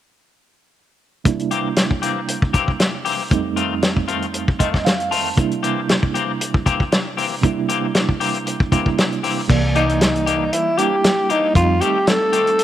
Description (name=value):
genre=straight-eighth soul blues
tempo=116 BPM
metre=4/4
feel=swing 54% on 16ths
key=C mixolydian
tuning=A4 = 441 Hz
part: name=reed electric piano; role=accompaniment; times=1.2-12.6 s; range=F2 to A5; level=-23 LUFS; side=right 7 dB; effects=tremolo
part: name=warm soul drum kit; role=drums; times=1.3-12.6 s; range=crash cymbal, hi-hat, kick drum, snare drum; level=-19 LUFS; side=left 1 dB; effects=none
part: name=clean electric guitar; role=stabs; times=1.5-12.5 s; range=Eb3 to G4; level=-24 LUFS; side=left 9 dB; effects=harmonic tremolo, tape echo
part: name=vintage muted fingered electric bass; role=bass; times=9.5-11.8 s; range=C2 to F2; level=-19 LUFS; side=equal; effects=transformer saturation
part: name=growling tenor saxophone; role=melody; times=9.8-12.6 s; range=Eb4 to A4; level=-17 LUFS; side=left 1 dB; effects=none
room=light reverb, small room ambience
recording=1960s-style stereo with parts hard left and right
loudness=-16 LUFS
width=side -12 dB against mid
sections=1.3-9.5 A section; 9.5-12.6 B section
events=reed electric piano fill 4.3-5.4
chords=1.3 C7; 3.3 F7; 5.4 C9; 11.6 F9